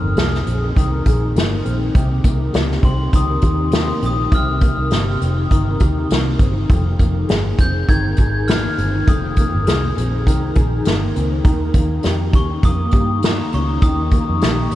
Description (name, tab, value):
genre	indie pop, bedroom pop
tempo	101 BPM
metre	4/4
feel	swing 55% on 16ths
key	unclear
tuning	A4 = 439 Hz
part	glockenspiel with soft plastic mallets	melody	0.0-14.8 s	Bb5 to Ab6	-26 LUFS	left 2 dB	lush chorus, tape echo
part	nylon-string guitar	accompaniment	0.0-14.8 s	F2 to Ab4	-22 LUFS	left 1 dB	ensemble chorus, vibrato effect
part	vintage muted fingered electric bass	bass	0.0-14.8 s	F1 to G2	-20 LUFS	equal	none
part	unplugged drum kit	drums	0.2-14.8 s	hi-hat, kick drum, snare drum	-17 LUFS	equal	none
room	light reverb, small room ambience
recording	cassette tape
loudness	-15 LUFS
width	side -14 dB against mid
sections	0.0-14.8 A section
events	none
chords	0.0 Fm11; 1.9 Cm7; 6.7 Fm11; 11.5 Eb7